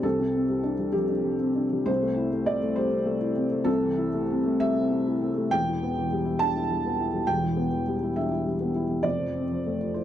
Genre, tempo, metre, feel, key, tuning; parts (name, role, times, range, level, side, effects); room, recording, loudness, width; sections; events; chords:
neoclassical minimalist piano; 67 BPM (dotted quarters); 6/8; rubato; A4 = 440 Hz
felt-muted upright piano; solo; 0.0-10.0 s; E1 to A5; -24 LUFS; equal
small room ambience; dry, close 1970s-style studio recording; -24 LUFS; side -11 dB against mid
0.0-10.0 A section
0.0 Csus2; 1.9 Am/C; 5.5 Em; 9.0 F